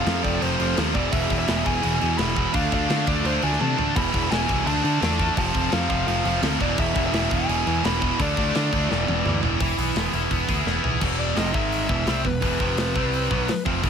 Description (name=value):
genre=heavy metal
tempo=170 BPM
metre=4/4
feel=straight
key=E phrygian dominant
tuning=A4 = 440 Hz
part: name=dark smooth lead guitar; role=melody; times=0.0-13.6 s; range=B4 to B5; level=-28 LUFS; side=left 1 dB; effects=overdrive, ping-pong delay
part: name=clear studio string section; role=sustained chords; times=0.0-9.6 s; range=D3 to A4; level=-37 LUFS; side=left 3 dB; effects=none
part: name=heavy high-gain guitar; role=riff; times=0.0-13.9 s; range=E2 to G#4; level=-27 LUFS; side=left 17 dB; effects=distortion
part: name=high-gain distorted guitar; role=riff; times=0.0-13.9 s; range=E2 to E4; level=-26 LUFS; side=right 16 dB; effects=distortion
part: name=growling picked electric bass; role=bass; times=0.0-13.9 s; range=E1 to D3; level=-27 LUFS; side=equal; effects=overdrive
part: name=tight metal drum kit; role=drums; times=0.1-13.9 s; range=crash cymbal, hi-hat, kick drum, snare drum, toms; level=-27 LUFS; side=equal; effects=none
room=little or no reverb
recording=none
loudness=-20 LUFS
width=side -7 dB against mid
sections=0.0-9.6 A section; 9.6-11.0 B section; 11.0-13.9 C section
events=drum fill 3.6-4.0, 8.9-9.6, 10.7-11.0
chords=0.0 F; 0.9 E; 2.5 Dm; 4.0 E; 4.7 Dm; 5.4 F; 6.6 E; 8.2 Dm; 8.9 E; 11.0 E5; 11.5 G#5; 11.9 E5; 12.6 F5; 13.0 C5; 13.3 E5